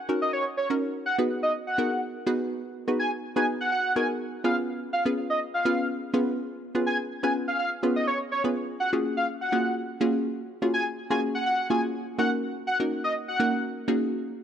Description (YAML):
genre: pop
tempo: 124 BPM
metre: 4/4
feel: straight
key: unclear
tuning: A4 = 440 Hz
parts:
  - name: hollow square pluck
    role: accompaniment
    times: 0.1-14.2 s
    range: A#3 to B4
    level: -27 LUFS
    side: equal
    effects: chorus
  - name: octave-doubled lead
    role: melody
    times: 0.2-13.6 s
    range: C#5 to G#5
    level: -28 LUFS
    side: equal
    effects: chorus, tape echo
room: light reverb, digital ambience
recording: none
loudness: -24 LUFS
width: side -9 dB against mid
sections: 0.8-14.4 A section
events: none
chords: 0.0 D#m7; 0.8 G#m7; 4.4 C#7; 8.6 F#maj9; 12.2 D#m7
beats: 0.33 | 0.82 1.30 1.78 2.27 | 2.75 3.23 3.72 4.20 | 4.69 5.17 5.65 6.14 | 6.62 7.11 7.59 8.07 | 8.56 9.04 9.53 10.01 | 10.49 10.98 11.46 11.95 | 12.43 12.91 13.40 13.88